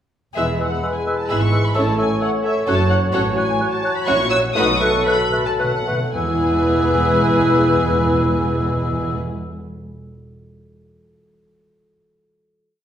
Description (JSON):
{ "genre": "quick classical-period movement for symphony orchestra", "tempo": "106-132 BPM", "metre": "3/4", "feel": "straight", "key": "E major", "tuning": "A4 = 440 Hz", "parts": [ { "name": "dark studio violin section", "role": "melody", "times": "0.4-9.2 s", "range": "E5 to E6", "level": "-25 LUFS", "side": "left 3 dB", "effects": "none" }, { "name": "clear clarinet", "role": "second line", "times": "0.4-9.2 s", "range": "B4 to C#5", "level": "-26 LUFS", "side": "left 2 dB", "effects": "none" }, { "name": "mellow hollow silver concert flute", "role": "second line", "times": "0.4-9.2 s", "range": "E6 to F#6", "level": "-26 LUFS", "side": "left 1 dB", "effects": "none" }, { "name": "warm chamber violin section", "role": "second line", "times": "0.4-9.2 s", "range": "F#4 to E5", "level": "-28 LUFS", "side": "left 2 dB", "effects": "none" }, { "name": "dark bassoon", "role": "accompaniment", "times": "0.4-9.2 s", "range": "F#3 to B3", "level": "-26 LUFS", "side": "right 1 dB", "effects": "none" }, { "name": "dark studio viola section", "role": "accompaniment", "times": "0.4-9.2 s", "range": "G#3 to F#4", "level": "-26 LUFS", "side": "right 2 dB", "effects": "none" }, { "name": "mellow French horn section", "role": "sustained chords", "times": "0.4-9.2 s", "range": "E3 to A4", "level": "-24 LUFS", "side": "left 1 dB", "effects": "none" }, { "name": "mellow trumpet", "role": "stabs", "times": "0.4-9.2 s", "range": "A4 to C#5", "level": "-26 LUFS", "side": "right 1 dB", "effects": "none" }, { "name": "dark chamber cello section", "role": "bass", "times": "0.4-9.2 s", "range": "E2 to B2", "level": "-25 LUFS", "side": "right 1 dB", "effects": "none" }, { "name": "warm chamber double bass section", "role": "bass", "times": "0.4-9.2 s", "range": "E1 to B1", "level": "-26 LUFS", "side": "right 2 dB", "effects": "none" }, { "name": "timpani", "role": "percussion", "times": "4.5-9.2 s", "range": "E2 to B2", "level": "-27 LUFS", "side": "left 1 dB", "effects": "none" } ], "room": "wet recital hall reverb, RT60 1.4 s", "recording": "recorded in a church or concert hall", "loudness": "-16 LUFS", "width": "side -10 dB against mid", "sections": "0.4-6.1 A section; 6.1-9.5 final chord", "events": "slowing down 2.4-6.1; timpani fill 4.6-6.1", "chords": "0.4 E; 1.3 E/G#; 1.8 A; 2.7 F#m; 3.1 F#m/A; 4.1 F#7/A#; 4.6 B7; 6.1 E", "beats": "| 0.36 0.83 1.29 | 1.76 2.21 2.67 | 3.13 3.60 4.07 | 4.55 5.06 5.59 | 6.14 6.70 7.25 | 7.80 8.35 8.90" }